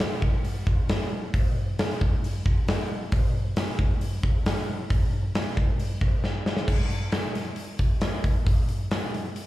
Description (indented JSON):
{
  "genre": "rock",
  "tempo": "134 BPM",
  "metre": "4/4",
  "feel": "straight",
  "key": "none",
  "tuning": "none",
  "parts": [
    { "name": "big rock drum kit", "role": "drums", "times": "0.0-9.5 s", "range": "crash cymbal, hi-hat, kick drum, snare drum", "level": "-23 LUFS", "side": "equal", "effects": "none" }
  ],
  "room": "light reverb",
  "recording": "live gig heard through the venue's PA, club reverb",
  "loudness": "-23 LUFS",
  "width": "side -16 dB against mid",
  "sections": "0.0-6.7 A section; 6.7-9.5 B section",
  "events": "drum fill 6.2-6.7",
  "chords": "none",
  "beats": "0.00 0.45 0.89 | 1.34 1.79 2.23 2.68 | 3.12 3.57 4.01 4.46 | 4.91 5.35 5.80 6.24 | 6.69 7.13 7.58 8.03 | 8.47 8.92 9.37"
}